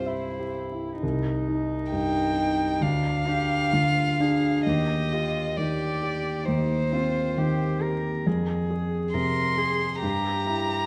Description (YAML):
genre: classical, slow romantic movement for piano trio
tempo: 67 BPM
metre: 4/4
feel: rubato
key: C minor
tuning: A4 = 441 Hz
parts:
  - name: rich violin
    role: melody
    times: 0.0-10.9 s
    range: C5 to C6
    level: -30 LUFS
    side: equal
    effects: none
  - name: warm cello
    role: second line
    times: 0.0-10.9 s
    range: D4 to Bb4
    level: -34 LUFS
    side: equal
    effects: none
  - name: clear grand piano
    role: accompaniment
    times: 0.0-10.9 s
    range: C2 to E5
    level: -28 LUFS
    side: equal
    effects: none
room: moderate scoring stage reverb, RT60 1.6 s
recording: dark, warm production, vinyl crackle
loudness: -26 LUFS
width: mono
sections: 0.0-1.0 A section; 1.0-10.9 B section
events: none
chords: 0.0 C; 1.0 Cm; 2.8 N.C.; 4.7 Cm/Eb; 8.3 Fm; 10.0 Gm6